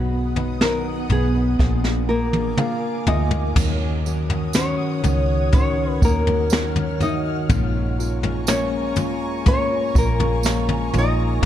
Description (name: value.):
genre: pop ballad.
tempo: 61 BPM.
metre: 4/4.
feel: straight.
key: Eb minor.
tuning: A4 = 440 Hz.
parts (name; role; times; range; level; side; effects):
nylon-string guitar; melody; 0.0-11.5 s; Bb3 to Eb5; -25 LUFS; left 2 dB; none.
tine electric piano; accompaniment; 0.0-11.5 s; Eb3 to Ab5; -28 LUFS; equal; medium stereo tremolo.
glassy FM pad; sustained chords; 0.0-11.5 s; B3 to F6; -30 LUFS; right 1 dB; ensemble chorus, built-in reverb.
fingerpicked plugged-in steel-string acoustic guitar; arpeggios; 0.0-11.5 s; Bb2 to B4; -32 LUFS; left 4 dB; none.
vintage muted fingered electric bass; bass; 0.0-11.5 s; Bb1 to Eb2; -23 LUFS; equal; none.
jazz brush drum kit; drums; 0.4-11.5 s; crash cymbal, kick drum, snare drum, toms; -22 LUFS; equal; none.
tambourine; percussion; 3.6-11.2 s; none; -33 LUFS; right 10 dB; none.
room: light reverb, studio reverb.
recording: dark, warm production.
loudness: -18 LUFS.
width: side -11 dB against mid.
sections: 0.0-3.6 A section; 3.6-11.5 B section.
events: drum fill 1.6-3.6; tine electric piano fill 2.1-3.6.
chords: 0.0 B; 1.6 Bb7; 3.6 Ebm7; 7.5 Bbm7.